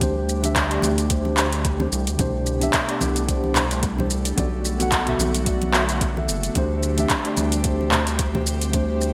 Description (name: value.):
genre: sunset chillout.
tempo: 110 BPM.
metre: 4/4.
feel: swing 56% on 16ths.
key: unclear.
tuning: A4 = 441 Hz.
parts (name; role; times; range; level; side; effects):
mellow tine electric piano; accompaniment; 0.0-9.1 s; B2 to F#5; -28 LUFS; equal; digital delay.
airy breathy pad; sustained chords; 0.0-9.1 s; B2 to G4; -31 LUFS; equal; chorus.
round analog bass; bass; 0.0-9.1 s; F#1 to D2; -27 LUFS; equal; none.
deep house drum kit; drums; 0.0-9.1 s; handclaps, hi-hat, shaker; -26 LUFS; equal; overdrive, gated reverb.
electronic kick drum; drums; 0.0-8.9 s; none; -28 LUFS; equal; overdrive.
congas; percussion; 0.0-8.9 s; none; -34 LUFS; equal; none.
room: moderate lush hall reverb, RT60 1.7 s, digital ambience.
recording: bright 1980s-style digital production.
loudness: -22 LUFS.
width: mono.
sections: 0.0-9.1 A section.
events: none.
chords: 0.0 D7sus4; 2.2 Am11/C; 4.4 Bm7; 6.6 D7sus4.